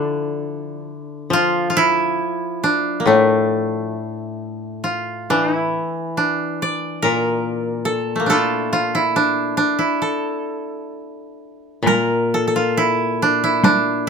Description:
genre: japanese traditional, Japanese chamber music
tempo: 68 BPM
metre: 2/4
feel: uneven beats, rubato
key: A miyako bushi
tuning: A4 = 440 Hz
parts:
  - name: koto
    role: melody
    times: 0.0-14.1 s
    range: A3 to D5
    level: -19 LUFS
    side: right 1 dB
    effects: none
  - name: koto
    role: accompaniment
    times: 0.0-14.1 s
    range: A2 to F3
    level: -22 LUFS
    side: left 3 dB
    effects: none
  - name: taiko ensemble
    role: percussion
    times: 11.9-13.8 s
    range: none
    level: -17 LUFS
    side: right 1 dB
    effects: none
room: light reverb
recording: close, detailed microphones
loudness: -17 LUFS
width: side -6 dB against mid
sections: 0.0-11.8 A section; 11.8-14.1 B section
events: none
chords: none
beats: 0.44 | 1.31 2.18 | 3.05 3.93 | 4.83 5.74 | 6.62 7.47 | 8.33 9.18 | 10.04 10.93 | 11.85 12.75 | 13.63

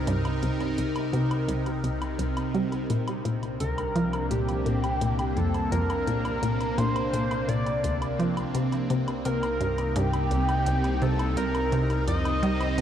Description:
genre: ambient, sequencer-driven space music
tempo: 85 BPM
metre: 4/4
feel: straight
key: C minor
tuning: A4 = 438 Hz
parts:
  - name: evolving wavetable pad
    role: sustained chords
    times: 0.0-12.8 s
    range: C3 to C5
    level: -30 LUFS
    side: equal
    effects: phaser, built-in reverb
  - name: analog drone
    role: bass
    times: 0.0-12.8 s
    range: C2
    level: -32 LUFS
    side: equal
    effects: chorus, tube saturation
  - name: resonant blip pluck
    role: riff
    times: 0.1-12.8 s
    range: C2 to G3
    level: -28 LUFS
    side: equal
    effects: chorus, tape echo
  - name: electronic hi-hat and woodblock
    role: percussion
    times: 0.1-12.8 s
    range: none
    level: -40 LUFS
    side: equal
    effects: overdrive, tape echo
  - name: pulse-width lead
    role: melody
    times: 3.6-12.8 s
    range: G4 to Eb5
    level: -30 LUFS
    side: equal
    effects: chorus, tape echo
room: moderate plate reverb, RT60 2.5 s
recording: dark, warm production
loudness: -24 LUFS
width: side -10 dB against mid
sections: 0.0-12.8 A section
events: none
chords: 0.0 Cm7; 2.9 Bbadd9/C; 8.5 Cm7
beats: | 0.07 0.78 1.49 2.19 | 2.90 3.60 4.31 5.01 | 5.72 6.43 7.13 7.84 | 8.54 9.25 9.96 10.66 | 11.37 12.07 12.78

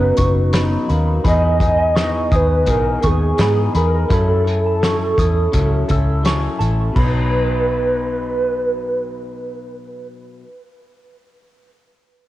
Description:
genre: indie pop, bedroom pop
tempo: 84 BPM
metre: 4/4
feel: swing 55% on 16ths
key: B major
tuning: A4 = 440 Hz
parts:
  - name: warbly nostalgic lead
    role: melody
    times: 0.0-10.1 s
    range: G#4 to D#5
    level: -20 LUFS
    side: right 2 dB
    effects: ensemble chorus, cassette tape, tape echo
  - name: bright reed electric piano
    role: accompaniment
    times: 0.0-1.3 s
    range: B3 to F#4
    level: -26 LUFS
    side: right 2 dB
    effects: fast tremolo, cassette tape
  - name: electric guitar through a small old amp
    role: accompaniment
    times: 0.0-10.5 s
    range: B2 to A4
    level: -24 LUFS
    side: left 3 dB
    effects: wide subtle chorus, warbly pitch drift, cassette tape
  - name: vintage muted fingered electric bass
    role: bass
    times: 0.0-10.1 s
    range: F#1 to G#2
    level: -18 LUFS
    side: equal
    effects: none
  - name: soft synth bell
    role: second line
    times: 0.2-9.1 s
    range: G#5 to E6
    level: -28 LUFS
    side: right 1 dB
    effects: wide subtle chorus, cassette tape, tape echo
  - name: loose indie drum kit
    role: drums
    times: 0.2-7.1 s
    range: crash cymbal, hi-hat, kick drum, snare drum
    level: -22 LUFS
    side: equal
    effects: cassette tape
room: light reverb, studio ambience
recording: home recording on cassette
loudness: -14 LUFS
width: side -15 dB against mid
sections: 0.0-7.0 A section; 7.0-9.8 B section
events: none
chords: 0.0 Bmaj7; 1.2 Emaj7; 4.1 F#m7; 7.0 B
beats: 0.53 | 1.25 1.96 2.67 3.39 | 4.10 4.82 5.53 6.25 | 6.96 7.67 8.39 9.10

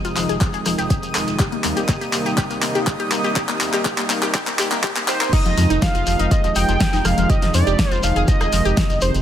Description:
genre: progressive house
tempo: 122 BPM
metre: 4/4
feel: straight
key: F minor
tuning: A4 = 441 Hz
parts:
  - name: warm analog pad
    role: sustained chords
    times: 0.0-9.2 s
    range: C3 to Eb4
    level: -25 LUFS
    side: right 1 dB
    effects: chorus, sidechain pumping
  - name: glassy wavetable pluck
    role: arpeggios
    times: 0.0-9.2 s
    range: F3 to Ab4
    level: -25 LUFS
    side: left 3 dB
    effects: chorus, sidechain pumping, digital delay
  - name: round analog bass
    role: bass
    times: 0.0-9.2 s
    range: Eb1 to F2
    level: -22 LUFS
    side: equal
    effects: sidechain pumping
  - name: deep house drum kit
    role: drums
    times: 0.0-9.2 s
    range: crash cymbal, handclaps, hi-hat, rim click, snare drum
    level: -24 LUFS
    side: equal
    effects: high-pass filter on hats, high-pass filter on snare, high-pass filter on cymbals, high-pass filter on room
  - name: shekere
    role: percussion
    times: 0.0-9.2 s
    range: none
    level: -30 LUFS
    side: left 2 dB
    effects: none
  - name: backwards swelling texture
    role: texture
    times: 0.0-5.3 s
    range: Eb6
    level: -31 LUFS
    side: right 1 dB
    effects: built-in reverb, sidechain pumping
  - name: electronic kick drum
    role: drums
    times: 0.4-8.9 s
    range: none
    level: -19 LUFS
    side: equal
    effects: none
  - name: wide unison lead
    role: melody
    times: 5.1-9.1 s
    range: C5 to G5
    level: -22 LUFS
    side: right 2 dB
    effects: digital delay
room: light reverb, digital ambience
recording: high-pass filter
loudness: -16 LUFS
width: side -10 dB against mid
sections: 0.0-5.3 A section; 5.3-9.2 B section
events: build-up 0.0-5.3; drum fill 0.0-5.3; filter sweep on synth arpeggio sound 0.0-5.3; filter sweep 0.0-5.3; drop 5.3-9.2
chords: 0.0 Fm7; 1.4 Eb6; 5.3 Fm7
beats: 0.41 0.90 | 1.40 1.89 2.38 2.87 | 3.36 3.85 4.35 4.84 | 5.33 5.82 6.31 6.80 | 7.30 7.79 8.28 8.77

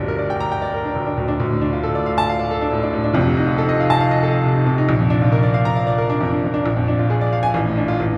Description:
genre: classical, virtuoso piano study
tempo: 137 BPM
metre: 4/4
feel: rubato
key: D minor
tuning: A4 = 439 Hz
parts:
  - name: clear grand piano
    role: solo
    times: 0.0-8.2 s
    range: F1 to Bb5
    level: -19 LUFS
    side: equal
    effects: none
room: wet church reverb, RT60 3.6 s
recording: recorded in a church or concert hall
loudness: -19 LUFS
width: mono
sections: 0.0-8.2 A section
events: none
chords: 0.0 Gm; 1.4 Dm; 3.2 F7; 4.9 Bb; 6.7 Bb7; 7.5 Dm/A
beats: 0.08 0.52 0.96 | 1.41 1.85 2.29 2.72 | 3.16 3.59 4.02 4.46 | 4.89 5.33 5.76 6.21 | 6.66 7.10 7.55 8.00

